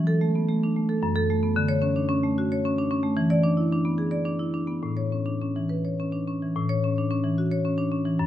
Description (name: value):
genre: classical, contemporary piece for solo marimba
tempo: 111 BPM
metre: 3/4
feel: rubato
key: A major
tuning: A4 = 439 Hz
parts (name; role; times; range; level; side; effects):
- marimba with medium hard mallets; solo; 0.0-8.3 s; F#2 to D5; -22 LUFS; equal; none
room: moderate recital hall reverb, RT60 1.4 s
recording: close, detailed microphones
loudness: -23 LUFS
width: side -12 dB against mid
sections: 0.0-6.6 A section; 6.6-8.3 B section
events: none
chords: 0.0 E7sus4; 1.0 F#m; 1.6 Dmaj7; 3.2 E7; 4.8 Aadd9; 6.6 A6